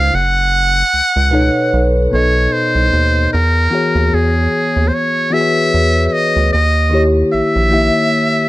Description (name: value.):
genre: R&B, neo-soul.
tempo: 75 BPM.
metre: 4/4.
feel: swing 55% on 16ths.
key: unclear.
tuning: A4 = 437 Hz.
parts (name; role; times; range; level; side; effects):
trumpet with metal mute; melody; 0.0-8.5 s; G#4 to Gb5; -15 LUFS; equal; none.
bell-like tine electric piano; accompaniment; 0.0-8.5 s; Cb3 to Fb5; -16 LUFS; left 2 dB; phaser.
rubbery square bass; bass; 0.0-7.9 s; Gb1 to E2; -15 LUFS; right 1 dB; none.
room: light reverb.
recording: none.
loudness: -11 LUFS.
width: side -16 dB against mid.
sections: 0.0-8.5 A section.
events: none.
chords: 0.1 Gbm; 1.7 B7b9; 3.3 E6; 6.5 Eb7b9.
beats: | 0.12 0.92 1.72 2.52 | 3.32 4.12 4.92 5.72 | 6.52 7.32 8.12.